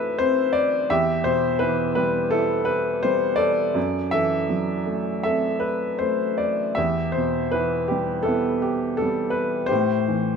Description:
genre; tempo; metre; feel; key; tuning
classical, lyrical solo piano; 83 BPM; 4/4; rubato; E minor; A4 = 438 Hz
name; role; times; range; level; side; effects
warm baby grand piano; solo; 0.0-10.4 s; E2 to E5; -20 LUFS; left 1 dB; none
room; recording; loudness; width
light reverb; minimal, uncompressed stereo recording; -20 LUFS; side -6 dB against mid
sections
0.0-10.4 A section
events
none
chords
0.0 F#m7b5; 0.9 Em; 3.8 F#m7b5; 6.8 Em; 9.7 Am7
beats
0.19 | 0.90 1.61 2.33 3.05 | 3.77 4.50 5.25 6.00 | 6.77 7.53 8.27 8.99 | 9.71

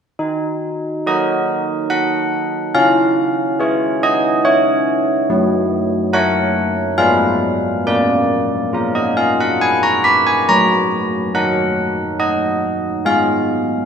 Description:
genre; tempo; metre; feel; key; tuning
classical, tune for church bells; 70 BPM; 3/4; straight; Eb minor; A4 = 441 Hz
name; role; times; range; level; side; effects
carillon bells; solo; 0.2-13.9 s; Gb3 to Cb6; -14 LUFS; equal; none
room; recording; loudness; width
moderate concert hall reverb, RT60 2.2 s; none; -14 LUFS; side -7 dB against mid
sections
0.2-13.9 A section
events
none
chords
0.2 Ebm; 2.8 Db; 5.3 Gb; 7.0 Fdim/Ab; 7.9 Bb; 10.5 Ebm/Gb; 13.1 Fdim/Ab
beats
| 0.20 1.07 1.92 | 2.76 3.61 4.45 | 5.30 6.14 7.00 | 7.87 8.75 9.62 | 10.49 11.35 12.20 | 13.05

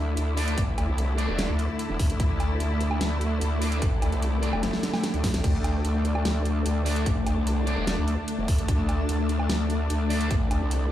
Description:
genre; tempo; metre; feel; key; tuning
heavy wobble dubstep; 148 BPM; 4/4; half-time; unclear; A4 = 443 Hz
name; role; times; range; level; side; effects
muted studio string section; sustained chords; 0.0-10.9 s; D3 to E4; -32 LUFS; left 2 dB; vintage 12-bit sampler grit, sidechain pumping
growl bass; bass; 0.0-10.9 s; E1 to D2; -26 LUFS; equal; chorus, overdrive
granular cloud pad; texture; 0.0-10.9 s; A3 to A5; -32 LUFS; left 1 dB; built-in reverb, sidechain pumping
dubstep drum kit; drums; 0.2-10.8 s; crash cymbal, hi-hat, snare drum, woodblock; -32 LUFS; equal; small room ambience
fuzz guitar; stabs; 0.4-10.3 s; A3 to D5; -34 LUFS; right 1 dB; distortion, tape echo
electronic kick drum; drums; 0.6-10.4 s; none; -26 LUFS; equal; small room ambience
room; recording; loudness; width
light reverb; played on a big sound system in a bare room, large studio reverb; -23 LUFS; side -12 dB against mid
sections
0.0-10.9 A section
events
drum fill 4.6-5.4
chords
0.0 D5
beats
0.17 | 0.58 0.98 1.39 1.79 | 2.20 2.60 3.01 3.41 | 3.82 4.22 4.63 5.04 | 5.44 5.85 6.25 6.66 | 7.06 7.47 7.87 8.28 | 8.68 9.09 9.49 9.90 | 10.31 10.71

